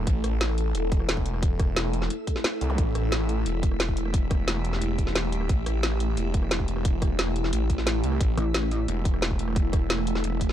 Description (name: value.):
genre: dark technical drum and bass.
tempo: 177 BPM.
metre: 4/4.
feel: straight.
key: unclear.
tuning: A4 = 441 Hz.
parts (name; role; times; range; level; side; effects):
swarming drone; sustained chords; 0.0-10.5 s; A3 to A4; -31 LUFS; equal; built-in reverb, vintage 12-bit sampler grit, sidechain pumping.
snarling distorted saw bass; bass; 0.0-10.5 s; E1 to C2; -27 LUFS; equal; distortion, overdrive, sidechain pumping.
drum and bass drum kit; drums; 0.1-10.5 s; hi-hat, rim click, snare drum; -30 LUFS; equal; none.
electronic kick drum; drums; 0.1-10.5 s; none; -25 LUFS; equal; none.
zap; sound effects; 2.7-2.8 s; none; -38 LUFS; equal; none.
pulsing pluck wobble bass; bass; 8.4-8.9 s; A1; -25 LUFS; equal; chorus.
room: little or no reverb.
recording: dark, warm production.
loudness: -23 LUFS.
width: side -11 dB against mid.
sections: 0.0-10.5 A section.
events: kick drops out 7.9-8.2.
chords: 0.0 A5.